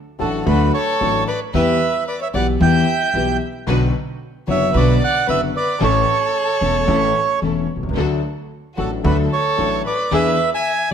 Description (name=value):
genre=tango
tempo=112 BPM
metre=4/4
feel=rubato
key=D major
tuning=A4 = 440 Hz
part: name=bandoneon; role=melody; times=0.2-10.9 s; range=A4 to G#5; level=-20 LUFS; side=right 5 dB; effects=tape echo
part: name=dark violin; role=second line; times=0.2-10.9 s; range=F#4 to E5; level=-24 LUFS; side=left 5 dB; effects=none
part: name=warm concert grand piano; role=accompaniment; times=0.2-10.9 s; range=E1 to A4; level=-21 LUFS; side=left 6 dB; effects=none
part: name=dark chamber string section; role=stabs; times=0.2-10.9 s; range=C#4 to B4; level=-27 LUFS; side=right 1 dB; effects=none
part: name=upright bass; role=bass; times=0.2-10.9 s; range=E1 to E2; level=-21 LUFS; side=right 2 dB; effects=none
room=moderate recital hall reverb, RT60 1.3 s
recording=close, detailed microphones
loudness=-16 LUFS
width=side -8 dB against mid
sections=0.0-10.9 A section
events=none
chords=0.0 D; 1.5 Em; 3.7 Bm; 5.8 A; 8.0 D; 10.1 E7